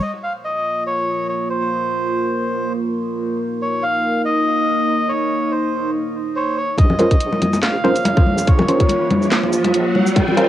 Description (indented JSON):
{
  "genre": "deep dubstep",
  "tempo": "142 BPM",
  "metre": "4/4",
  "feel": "swing 55% on 16ths, half-time",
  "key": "Bb minor",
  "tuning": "A4 = 440 Hz",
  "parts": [
    { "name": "melodica", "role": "melody", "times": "0.0-9.3 s", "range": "C5 to F5", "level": "-21 LUFS", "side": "equal", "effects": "dub echo" },
    { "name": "deep dark ambient pad", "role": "sustained chords", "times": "0.7-10.5 s", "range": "Bb3 to Db5", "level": "-22 LUFS", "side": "right 1 dB", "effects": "chorus, built-in reverb, cassette tape" },
    { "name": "deep soft wobble bass", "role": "bass", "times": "6.8-10.5 s", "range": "Bb1", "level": "-26 LUFS", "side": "equal", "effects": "chorus, high-pass filter" },
    { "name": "electronic kick drum", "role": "drums", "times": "6.8-10.3 s", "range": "none", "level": "-14 LUFS", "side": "equal", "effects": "cassette tape" },
    { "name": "garage drum kit", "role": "drums", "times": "6.8-10.5 s", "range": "handclaps, hi-hat, shaker, snare drum", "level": "-22 LUFS", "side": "right 1 dB", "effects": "cassette tape" },
    { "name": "congas", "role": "percussion", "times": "6.8-10.4 s", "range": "none", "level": "-20 LUFS", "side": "left 2 dB", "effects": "none" },
    { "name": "riser", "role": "sound effects", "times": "7.4-10.5 s", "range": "none", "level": "-23 LUFS", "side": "equal", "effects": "none" },
    { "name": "filtered dub chord stab", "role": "stabs", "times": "7.0-10.5 s", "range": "Db4 to C5", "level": "-20 LUFS", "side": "right 1 dB", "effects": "chorus, vintage 12-bit sampler grit, cassette tape, dub echo" }
  ],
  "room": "wet studio reverb, RT60 0.5 s",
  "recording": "home recording on cassette, high-pass filter",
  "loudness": "-16 LUFS",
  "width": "side -12 dB against mid",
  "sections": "0.0-6.8 A section; 6.8-10.5 B section",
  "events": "build-up 6.8-10.5; riser 7.4-10.5",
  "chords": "0.0 Bbmadd9"
}